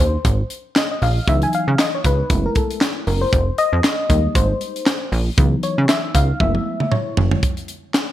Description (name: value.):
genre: early-eighties boogie funk.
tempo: 117 BPM.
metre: 4/4.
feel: swing 56% on 16ths.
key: unclear.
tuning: A4 = 440 Hz.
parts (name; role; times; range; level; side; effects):
mellow FM electric piano; accompaniment; 0.0-7.4 s; Fb3 to Ab5; -22 LUFS; left 2 dB; chorus.
plucky analog bass; bass; 0.0-7.4 s; F1 to Db3; -18 LUFS; right 1 dB; none.
tight funk drum kit; drums; 0.2-8.1 s; handclaps, hi-hat, kick drum, snare drum, toms; -19 LUFS; equal; none.
room: light reverb, small room reverb.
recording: bright 1980s-style digital production.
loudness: -16 LUFS.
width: side -13 dB against mid.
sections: 0.0-7.4 A section.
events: FM electric piano solo 0.0-7.4; drum fill 6.4-7.4.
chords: 0.0 Fm11; 1.3 Dbm11; 2.3 Gbm11; 3.3 Fm11; 5.4 Dbm11; 6.4 Gbm11; 7.4 N.C..